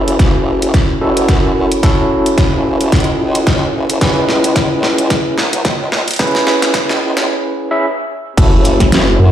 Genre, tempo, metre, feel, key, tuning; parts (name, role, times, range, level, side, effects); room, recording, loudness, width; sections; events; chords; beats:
glitch hop; 110 BPM; 4/4; swing 57% on 16ths; F# minor; A4 = 440 Hz
overdriven tine electric piano; stabs; 0.0-9.3 s; C#4 to E5; -15 LUFS; equal; fast tremolo, sidechain pumping, low-pass filter, tape echo
formant-sweep wobble bass; bass; 0.0-9.3 s; E1 to F#2; -16 LUFS; equal; chorus, high-pass filter
dubstep drum kit; drums; 0.1-9.0 s; crash cymbal, hi-hat, shaker, snare drum; -18 LUFS; equal; overdrive, high-pass filter on snare, high-pass filter on toms, high-pass filter on hats, high-pass filter on cymbals, high-pass filter on perc, high-pass filter on room
electronic kick drum; drums; 0.2-8.9 s; -14 LUFS; equal; overdrive
moderate digital room reverb, RT60 1.0 s; played on a big sound system in a bare room, large studio reverb, high-pass filter; -11 LUFS; side -10 dB against mid
0.0-8.4 A section
build-up 0.0-8.4; drum fill 0.0-7.3; filter sweep on tine electric piano 0.0-8.4; filter sweep 0.0-8.4; break 7.3-8.4
0.0 F#m7; 4.0 C#m7; 8.4 F#m7
0.20 0.74 1.29 | 1.83 2.38 2.92 3.47 | 4.01 4.56 5.11 5.65 | 6.20 6.74 7.29 7.83 | 8.38 8.92